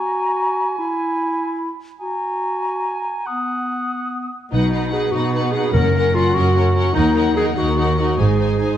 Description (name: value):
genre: cinematic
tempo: 98 BPM (dotted quarters)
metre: 6/8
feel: straight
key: unclear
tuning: A4 = 440 Hz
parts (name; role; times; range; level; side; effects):
- mellow cor anglais; second line; 0.0-4.3 s; F#5 to G#5; -27 LUFS; right 3 dB; none
- mellow hollow concert flute; second line; 0.0-4.3 s; A#5 to D#6; -24 LUFS; left 1 dB; none
- warm clarinet; second line; 0.0-8.8 s; B3 to A#4; -22 LUFS; left 1 dB; none
- warm symphonic violin section; melody; 4.5-8.8 s; F#5 to G#5; -29 LUFS; left 4 dB; none
- warm symphonic violin section; second line; 4.5-8.8 s; A#4 to B#4; -27 LUFS; left 2 dB; none
- warm symphonic viola section; accompaniment; 4.5-8.8 s; C#4 to D#4; -26 LUFS; equal; none
- concert harp; arpeggios; 4.5-8.8 s; F#2 to B#4; -26 LUFS; left 6 dB; none
- rich studio double bass section; bass; 4.5-8.6 s; F#1 to D#2; -22 LUFS; right 3 dB; none
- rich symphonic cello section; bass; 4.5-8.7 s; D#2 to B2; -21 LUFS; right 2 dB; none
- timpani; percussion; 5.7-6.3 s; F#2; -22 LUFS; right 1 dB; none
room: moderate recital hall reverb, RT60 1.8 s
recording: worn, warbling old tape, cassette tape, warbly pitch drift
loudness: -17 LUFS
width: side -10 dB against mid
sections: 0.0-4.5 A section; 4.5-8.8 B section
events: build-up 0.0-4.5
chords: 0.0 F#add9; 0.8 E; 2.0 F#add9; 3.3 B; 5.7 F#; 7.0 D#m; 8.2 G#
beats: 0.18 | 0.79 1.40 | 2.01 2.63 | 3.26 3.89 | 4.52 5.13 | 5.75 6.36 | 6.96 7.57 | 8.20